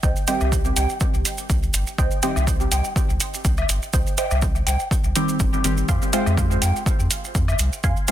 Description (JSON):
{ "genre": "dub techno", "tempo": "123 BPM", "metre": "4/4", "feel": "swing 54% on 16ths", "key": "C minor", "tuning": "A4 = 440 Hz", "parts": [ { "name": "filtered dub chord stab", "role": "riff", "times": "0.0-8.1 s", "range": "C5 to C6", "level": "-31 LUFS", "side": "right 4 dB", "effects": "phaser, sidechain pumping, dub echo" }, { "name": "soft dub sub bass", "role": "bass", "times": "0.0-7.9 s", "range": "G1 to F2", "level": "-22 LUFS", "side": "equal", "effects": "sidechain pumping" }, { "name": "electronic kick drum", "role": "drums", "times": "0.0-7.9 s", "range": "none", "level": "-22 LUFS", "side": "equal", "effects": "none" }, { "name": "maracas", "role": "percussion", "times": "0.0-8.1 s", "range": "none", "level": "-29 LUFS", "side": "right 5 dB", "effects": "none" }, { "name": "deep mellow chord stab", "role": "stabs", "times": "0.3-8.1 s", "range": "Eb3 to C5", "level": "-26 LUFS", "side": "equal", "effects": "chorus, phaser, sidechain pumping, dub echo" }, { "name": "electronic hi-hat", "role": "drums", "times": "0.3-8.1 s", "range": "none", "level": "-27 LUFS", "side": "right 1 dB", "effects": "none" }, { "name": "cowbell and woodblock", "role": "percussion", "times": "0.3-8.1 s", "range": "none", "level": "-30 LUFS", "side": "left 3 dB", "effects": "overdrive, sidechain pumping on perc, dub echo" } ], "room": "little or no reverb", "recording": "dense, heavily limited modern master", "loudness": "-18 LUFS", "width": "side -12 dB against mid", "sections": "0.0-8.1 A section", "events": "none", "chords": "0.0 Cm; 5.9 Fm" }